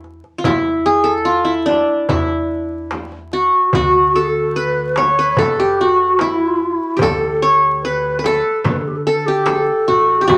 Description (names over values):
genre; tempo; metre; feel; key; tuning
Turkish makam ensemble; 73 BPM; 4/4; straight; E makam hicaz; A4 = 440 Hz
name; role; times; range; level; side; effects
qanun; melody; 0.0-10.4 s; D4 to C#5; -17 LUFS; equal; none
upright bass; bass; 0.0-10.4 s; A1 to D3; -31 LUFS; equal; none
darbuka; percussion; 0.0-10.4 s; none; -25 LUFS; equal; none
frame drum; percussion; 0.5-10.4 s; none; -26 LUFS; equal; none
breathy low ney; second line; 3.3-10.4 s; E4 to C#5; -22 LUFS; equal; none
room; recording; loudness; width
moderate studio reverb, RT60 0.5 s; vinyl crackle; -16 LUFS; mono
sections
0.0-3.7 A section; 3.7-10.4 B section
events
none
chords
none